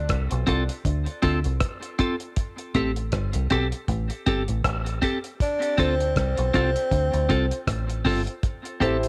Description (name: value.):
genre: dub reggae.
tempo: 79 BPM.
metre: 4/4.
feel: swing 57% on 16ths.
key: unclear.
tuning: A4 = 440 Hz.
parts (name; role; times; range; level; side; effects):
deep dub fingered electric bass; bass; 0.0-9.1 s; G1 to D2; -28 LUFS; equal; none.
cloth-damped thuddy drum kit; drums; 0.1-9.1 s; hi-hat, kick drum, rim click; -30 LUFS; equal; none.
clean electric guitar; accompaniment; 0.5-9.0 s; C4 to A4; -30 LUFS; equal; cassette tape, dub echo.
breathy tenor saxophone; melody; 5.4-8.0 s; C4 to D4; -30 LUFS; equal; dub echo.
dark baby grand piano; stabs; 8.8-9.0 s; E4 to C5; -26 LUFS; equal; cassette tape.
room: moderate spring reverb, RT60 1.8 s, studio reverb.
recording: home recording on cassette.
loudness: -25 LUFS.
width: mono.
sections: 0.0-9.1 A section.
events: break 0.0-5.4.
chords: 0.0 Dm7; 2.4 Am7; 5.4 Dm7; 8.4 Am7.